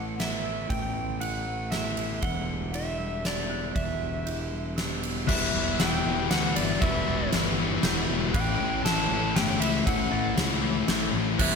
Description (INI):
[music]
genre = post-rock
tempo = 118 BPM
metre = 3/4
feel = straight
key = E minor, E dorian from 5.3 s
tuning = A4 = 437 Hz
[part]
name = overdriven slide guitar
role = melody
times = 0.0-11.6 s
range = D5 to A5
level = -32 LUFS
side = equal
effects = slapback echo
[part]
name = warbly tape-like pad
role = sustained chords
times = 0.0-11.6 s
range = E3 to E5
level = -39 LUFS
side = right 3 dB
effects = chorus, built-in reverb
[part]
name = clean electric guitar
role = arpeggios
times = 0.0-11.6 s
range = A2 to F#4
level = -37 LUFS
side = equal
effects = none
[part]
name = glockenspiel with rubber mallets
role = arpeggios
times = 0.0-11.6 s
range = D6 to G7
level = -38 LUFS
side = right 10 dB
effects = slapback echo
[part]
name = fuzz fingered electric bass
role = bass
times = 0.0-11.6 s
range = E1 to D2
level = -33 LUFS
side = right 1 dB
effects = overdrive
[part]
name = huge arena drum kit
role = drums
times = 0.2-11.5 s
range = crash cymbal, kick drum, ride cymbal, snare drum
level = -29 LUFS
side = right 1 dB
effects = none
[part]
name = sludgy distorted guitar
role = riff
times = 5.3-11.6 s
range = A2 to E4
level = -28 LUFS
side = left 11 dB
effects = overdrive
[sound]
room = moderate recital hall reverb, RT60 1.5 s, studio reverb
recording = big arena sound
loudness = -24 LUFS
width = side -5 dB against mid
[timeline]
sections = 0.0-5.3 A section; 5.3-11.6 B section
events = none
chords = 0.0 Asus2; 2.2 Em; 5.3 Emadd9; 8.3 A